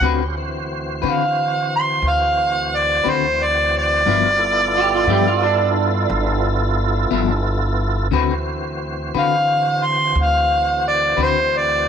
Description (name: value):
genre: blues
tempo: 59 BPM (dotted quarters)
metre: 12/8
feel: straight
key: D mixolydian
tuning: A4 = 443 Hz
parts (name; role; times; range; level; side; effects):
- warm harmonica; melody; 0.0-11.9 s; C5 to C6; -17 LUFS; equal; overdrive, slapback echo
- clean electric guitar; accompaniment; 0.0-11.4 s; G2 to B4; -24 LUFS; left 12 dB; harmonic tremolo
- tonewheel organ; sustained chords; 0.0-11.9 s; E3 to C5; -25 LUFS; right 1 dB; chorus vibrato, fast rotary speaker
- upright bass; bass; 0.0-11.9 s; G1 to D3; -23 LUFS; equal; none
- electric guitar through a small old amp; second line; 4.8-7.4 s; D4 to G4; -22 LUFS; right 13 dB; ensemble chorus
room: light reverb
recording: 1960s-style stereo with parts hard left and right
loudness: -16 LUFS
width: side -7 dB against mid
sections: 0.0-11.9 A section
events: none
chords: 0.0 D13; 4.1 G13; 8.1 D13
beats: | 0.02 1.03 2.04 3.05 | 4.07 5.08 6.09 7.11 | 8.12 9.14 10.15 11.17